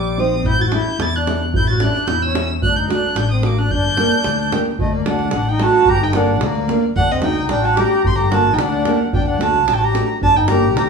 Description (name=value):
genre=balkan folk, Balkan wedding band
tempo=111 BPM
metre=2/4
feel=straight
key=G harmonic minor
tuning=A4 = 436 Hz
part: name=dark violin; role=melody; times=0.0-10.9 s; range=D5 to A6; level=-20 LUFS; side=right 4 dB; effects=none
part: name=accordion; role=second line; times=0.0-10.9 s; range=G3 to G4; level=-21 LUFS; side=left 2 dB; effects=none
part: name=fretless electric bass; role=bass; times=0.0-10.9 s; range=G1 to E2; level=-21 LUFS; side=left 2 dB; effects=none
part: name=nylon-string guitar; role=accompaniment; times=0.2-10.7 s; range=A3 to C5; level=-23 LUFS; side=right 2 dB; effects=none
part: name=davul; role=percussion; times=0.4-10.9 s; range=none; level=-23 LUFS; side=right 2 dB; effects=none
room=wet large studio reverb, RT60 1.1 s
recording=band playing live in one room, studio ambience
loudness=-14 LUFS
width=side -5 dB against mid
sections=0.0-4.8 A section; 4.8-10.9 B section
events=none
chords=0.4 A7; 2.6 D; 3.7 Gm; 4.8 D; 5.9 Gm; 7.0 D; 8.0 Gm; 9.1 D; 10.2 Gm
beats=| 0.45 0.99 | 1.54 2.08 | 2.62 3.17 | 3.71 4.25 | 4.79 5.34 | 5.88 6.42 | 6.96 7.50 | 8.05 8.59 | 9.13 9.67 | 10.22 10.76